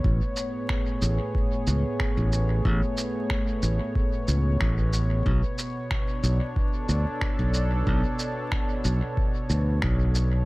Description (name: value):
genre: ambient dub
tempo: 92 BPM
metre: 4/4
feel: swing 54% on 16ths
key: B dorian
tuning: A4 = 441 Hz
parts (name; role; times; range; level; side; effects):
- warm analog pad; sustained chords; 0.0-10.5 s; A2 to C#5; -30 LUFS; equal; chorus
- modern bright fingered electric bass; bass; 0.0-10.4 s; A1 to D2; -23 LUFS; equal; tube saturation
- electronic kick drum; drums; 0.0-10.0 s; none; -28 LUFS; equal; overdrive
- electronic shaker and finger snaps; drums; 0.4-10.3 s; none; -34 LUFS; equal; dub echo
room: light reverb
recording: vinyl crackle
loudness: -23 LUFS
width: side -21 dB against mid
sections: 0.0-10.5 A section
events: none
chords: 0.0 Amaj9; 5.3 Bm7